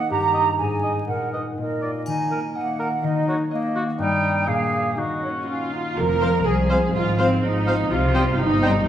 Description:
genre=cinematic, playful, whimsical film cue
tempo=124 BPM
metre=2/4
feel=straight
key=Eb minor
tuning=A4 = 439 Hz
part: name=hollow small flute group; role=second line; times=0.0-8.9 s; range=Cb5 to Bb5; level=-26 LUFS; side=right 4 dB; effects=none
part: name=warm clarinet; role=second line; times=0.0-8.7 s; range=G3 to C5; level=-28 LUFS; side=left 1 dB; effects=none
part: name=concert harp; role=arpeggios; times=0.0-8.9 s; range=G2 to Eb5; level=-26 LUFS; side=left 2 dB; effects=none
part: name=warm oboe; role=second line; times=0.3-8.7 s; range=Eb4 to G5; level=-30 LUFS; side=equal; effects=none
part: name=triangle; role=percussion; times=2.1-3.0 s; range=none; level=-46 LUFS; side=left 2 dB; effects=none
part: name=rich chamber viola section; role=accompaniment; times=5.2-8.9 s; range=C4 to Bb4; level=-23 LUFS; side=right 2 dB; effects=none
part: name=rich studio cello section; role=bass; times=6.0-8.8 s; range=C2 to C3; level=-26 LUFS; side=right 1 dB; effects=none
part: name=warm chamber double bass section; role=bass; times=6.0-8.8 s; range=F1 to C2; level=-26 LUFS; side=right 1 dB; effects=none
part: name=rich chamber violin section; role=melody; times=6.2-8.7 s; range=F5 to G5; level=-35 LUFS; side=left 3 dB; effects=none
part: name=rich symphonic violin section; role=second line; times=6.2-8.7 s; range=C5 to Eb5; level=-30 LUFS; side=left 2 dB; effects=none
part: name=dark French horn section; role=sustained chords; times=6.2-8.7 s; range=F3 to C4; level=-29 LUFS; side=left 2 dB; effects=none
room=wet scoring stage reverb, RT60 1.5 s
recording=vinyl crackle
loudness=-19 LUFS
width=side -10 dB against mid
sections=0.0-6.0 A section; 6.0-8.9 B section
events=none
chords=0.1 Eb/G; 0.6 Ab5; 1.1 Ebm/Bb; 1.6 Bb; 2.1 Ebm; 4.0 Eb/G; 4.5 Bb7; 5.0 Ebm; 6.0 Fm; 6.9 Fm/Ab; 7.9 Cm

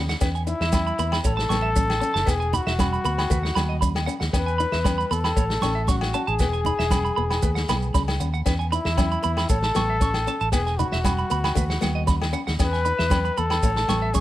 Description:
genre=highlife guitar band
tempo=116 BPM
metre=4/4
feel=straight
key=E major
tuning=A4 = 440 Hz
part: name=fingerpicked steel-string acoustic guitar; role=accompaniment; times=0.0-14.2 s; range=F#3 to D#4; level=-33 LUFS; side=left 7 dB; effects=none
part: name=clean electric guitar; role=arpeggios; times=0.0-14.2 s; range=G#4 to C#6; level=-28 LUFS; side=right 6 dB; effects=harmonic tremolo, analog delay
part: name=fingered electric bass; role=bass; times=0.0-14.2 s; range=E1 to E2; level=-26 LUFS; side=equal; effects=none
part: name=vintage drum kit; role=drums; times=0.1-14.2 s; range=kick drum, snare drum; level=-26 LUFS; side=equal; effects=none
part: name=maracas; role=percussion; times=0.1-14.2 s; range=none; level=-38 LUFS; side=right 9 dB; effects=none
part: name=agogo bells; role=percussion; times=0.2-14.0 s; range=none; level=-35 LUFS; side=left 5 dB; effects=none
part: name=congas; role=percussion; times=0.2-14.2 s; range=none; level=-31 LUFS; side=right 3 dB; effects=none
part: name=breathy trumpet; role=melody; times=0.5-14.2 s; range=E4 to B4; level=-27 LUFS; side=left 2 dB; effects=none
room=small room ambience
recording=none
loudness=-20 LUFS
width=side -14 dB against mid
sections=0.2-14.2 A section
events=drum fill 0.0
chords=0.2 E5; 1.2 A; 2.3 E; 3.3 B/D#; 4.3 E5; 5.4 A; 6.4 E; 7.4 B; 8.5 E5; 9.5 A; 10.5 E; 11.6 B/D#; 12.6 E5; 13.6 A

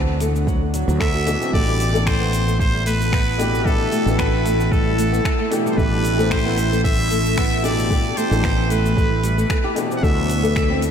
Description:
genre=organic downtempo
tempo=113 BPM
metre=4/4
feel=swing 54% on 16ths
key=unclear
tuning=A4 = 440 Hz
part: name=felt-muted upright piano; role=accompaniment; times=0.0-10.9 s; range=B2 to C5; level=-26 LUFS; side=left 3 dB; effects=sidechain pumping, ping-pong delay
part: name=bowed-like drone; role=sustained chords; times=0.0-10.9 s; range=D3 to F#5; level=-26 LUFS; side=right 1 dB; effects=built-in reverb, sidechain pumping
part: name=nylon-string guitar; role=arpeggios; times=0.0-10.8 s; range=F#3 to A4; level=-25 LUFS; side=equal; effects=wide subtle chorus, ping-pong delay
part: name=fretless electric bass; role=bass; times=0.0-10.9 s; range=A1 to D2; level=-21 LUFS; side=equal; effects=tube saturation, sidechain pumping
part: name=deep house drum kit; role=drums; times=0.2-10.9 s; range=cabasa, finger snaps, hi-hat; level=-31 LUFS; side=equal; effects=none
part: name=electronic kick drum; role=drums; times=0.5-10.7 s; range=none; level=-21 LUFS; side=equal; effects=none
part: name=trumpet with straight mute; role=melody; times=1.0-10.8 s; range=A4 to F#5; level=-24 LUFS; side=right 1 dB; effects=ping-pong delay
room=moderate lush hall reverb, RT60 1.9 s, small room ambience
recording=dreamy mix soaked in reverb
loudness=-16 LUFS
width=side -8 dB against mid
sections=0.0-1.5 A section; 1.5-10.9 B section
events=none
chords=0.0 D7; 1.5 Am9; 10.0 D7

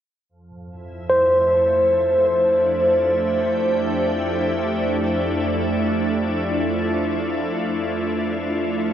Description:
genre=ambient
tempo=free time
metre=none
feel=none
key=F major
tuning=A4 = 440 Hz
part: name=soft additive organ-like pad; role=sustained chords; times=0.6-8.9 s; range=F2 to G4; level=-22 LUFS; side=equal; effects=ensemble chorus, built-in reverb, shimmer reverb
part: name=bright tine electric piano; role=arpeggios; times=1.1-8.9 s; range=C5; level=-20 LUFS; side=equal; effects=tape echo, shimmer reverb
room=wet huge ambient reverb, RT60 7.9 s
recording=worn, warbling old tape, cassette tape, warbly pitch drift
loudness=-18 LUFS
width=side -10 dB against mid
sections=0.3-8.9 A section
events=none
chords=0.3 F6

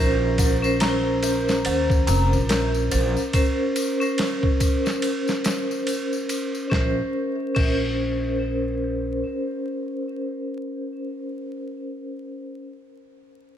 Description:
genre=trip hop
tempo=71 BPM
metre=4/4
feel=swing 59% on 16ths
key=Bb minor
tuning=A4 = 440 Hz
part: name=vibraphone with hard mallets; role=accompaniment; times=0.0-12.6 s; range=Db4 to C5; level=-24 LUFS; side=equal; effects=tremolo, vintage 12-bit sampler grit, low-pass filter, tape echo
part: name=dark detuned synth bell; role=arpeggios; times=0.0-12.6 s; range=Bb4 to Bb5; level=-30 LUFS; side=left 1 dB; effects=chorus, phaser, ping-pong delay
part: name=upright bass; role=bass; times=0.0-9.2 s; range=F1 to Eb2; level=-25 LUFS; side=equal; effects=tube saturation
part: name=boom bap sampler-style drum kit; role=drums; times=0.4-7.8 s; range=crash cymbal, kick drum, ride cymbal, snare drum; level=-25 LUFS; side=equal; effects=studio reverb
part: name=tambourine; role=percussion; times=0.4-6.7 s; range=none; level=-35 LUFS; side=left 8 dB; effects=none
room=light reverb, small room ambience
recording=vinyl crackle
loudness=-21 LUFS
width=side -10 dB against mid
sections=0.0-6.7 A section; 6.7-10.1 B section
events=filter sweep on vibraphone 0.0-6.7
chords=0.0 Bbmadd9

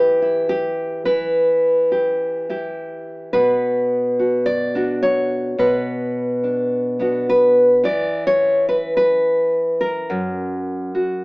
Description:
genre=folk, solo fingerstyle acoustic guitar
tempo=106 BPM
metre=4/4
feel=straight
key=B minor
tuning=A4 = 440 Hz
part: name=nylon-string guitar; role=solo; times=0.0-11.2 s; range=F#2 to D5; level=-16 LUFS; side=equal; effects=none
room=wet small room reverb, RT60 0.5 s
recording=heard from further back in the room, AM radio sound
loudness=-16 LUFS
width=side -27 dB against mid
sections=0.0-11.2 A section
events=none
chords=0.0 Em; 3.3 Bm; 7.8 N.C.; 10.1 F#

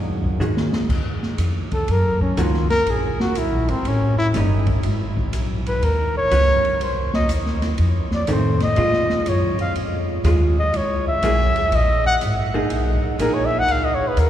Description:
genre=jazz, small-group swing and bop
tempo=122 BPM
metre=4/4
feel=swing 67% on 8ths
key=Eb minor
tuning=A4 = 439 Hz
part: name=upright bass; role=bass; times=0.0-14.3 s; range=G1 to Bb2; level=-21 LUFS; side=equal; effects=none
part: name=open jazz drum kit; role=drums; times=0.2-14.3 s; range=crash cymbal, hi-hat, kick drum, ride cymbal, snare drum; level=-28 LUFS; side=equal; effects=none
part: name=hollow-body jazz guitar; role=accompaniment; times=0.4-14.0 s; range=Eb3 to Ab4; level=-26 LUFS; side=right 1 dB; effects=none
part: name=breathy trumpet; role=melody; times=1.7-14.3 s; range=C4 to F#5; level=-22 LUFS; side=left 1 dB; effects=none
room=wet cathedral reverb, RT60 6.8 s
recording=recorded in a church or concert hall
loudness=-17 LUFS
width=side -11 dB against mid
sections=0.9-14.3 A section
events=drum fill 0.4-0.9; trumpet solo 0.9-14.3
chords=0.0 Ebm11; 0.9 Ebm7; 2.9 Absus2; 3.9 A7#11; 4.8 Abm7; 6.8 Cm; 7.8 F7; 8.8 Bbm7; 10.7 Gb9; 12.7 Bmaj13

